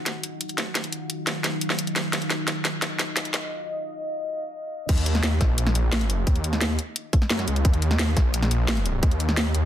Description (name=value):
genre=dark technical drum and bass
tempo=174 BPM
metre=4/4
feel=straight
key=Eb minor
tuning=A4 = 440 Hz
part: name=deep dark ambient pad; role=sustained chords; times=0.0-4.9 s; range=Eb4 to F5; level=-31 LUFS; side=equal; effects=chorus, built-in reverb, sidechain pumping
part: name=drum and bass drum kit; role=drums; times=0.1-9.6 s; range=crash cymbal, hi-hat, snare drum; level=-26 LUFS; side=equal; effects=overdrive, high-pass filter on hats, high-pass filter on snare, high-pass filter on cymbals
part: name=wide detuned saw bass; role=bass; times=4.9-9.7 s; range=Bb1 to Gb2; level=-23 LUFS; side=equal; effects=chorus, overdrive
part: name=electronic kick drum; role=drums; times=4.9-9.1 s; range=none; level=-20 LUFS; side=equal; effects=overdrive
room=light reverb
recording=dense, heavily limited modern master, high-pass filter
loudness=-22 LUFS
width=side -11 dB against mid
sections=0.0-4.9 A section; 4.9-9.7 B section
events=build-up 0.0-4.9; drum fill 0.0-3.5; filter sweep 0.0-4.9; break 3.5-4.9; drop 4.9-9.7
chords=0.0 Ebmadd9; 4.9 Eb5